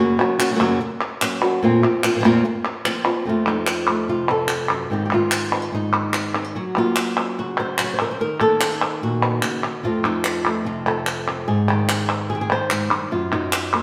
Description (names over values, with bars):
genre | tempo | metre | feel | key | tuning
flamenco | 146 BPM | 4/4 | straight | F phrygian dominant | A4 = 439 Hz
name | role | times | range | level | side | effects
flamenco guitar | melody | 0.0-13.8 s | F2 to Db5 | -23 LUFS | equal | none
palmas hand claps | percussion | 0.2-13.8 s | none | -25 LUFS | equal | none
room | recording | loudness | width
wet stone room reverb, RT60 1.3 s | band playing live in one room | -21 LUFS | mono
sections
0.0-3.3 A section; 3.3-13.8 B section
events
none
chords
0.0 Gb; 1.6 Fsus4; 3.3 F; 4.9 Ab; 6.5 Gb; 8.2 Ebm; 9.8 F; 11.5 Ab; 13.1 N.C.